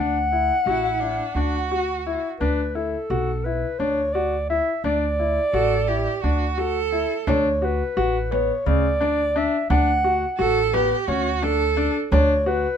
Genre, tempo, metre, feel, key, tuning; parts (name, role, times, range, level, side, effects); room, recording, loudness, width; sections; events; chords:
contemporary instrumental, chamber music in an uneven meter; 173 BPM (eighths); 7/8; straight; D major; A4 = 439 Hz
dark clarinet; melody; 0.0-12.8 s; A4 to F#5; -23 LUFS; equal
clear concert grand piano; arpeggios; 0.0-12.7 s; C#3 to F#4; -25 LUFS; left 4 dB
upright bass; bass; 0.0-12.6 s; A1 to D2; -26 LUFS; right 2 dB
warm cello; second line; 0.7-12.0 s; D4 to A4; -24 LUFS; right 7 dB
frame drum; percussion; 7.3-12.4 s; -28 LUFS; right 2 dB
light reverb; minimal, uncompressed stereo recording; -19 LUFS; side -8 dB against mid
0.0-7.3 A section; 7.3-12.8 B section
0.0 D; 2.4 E5; 4.8 D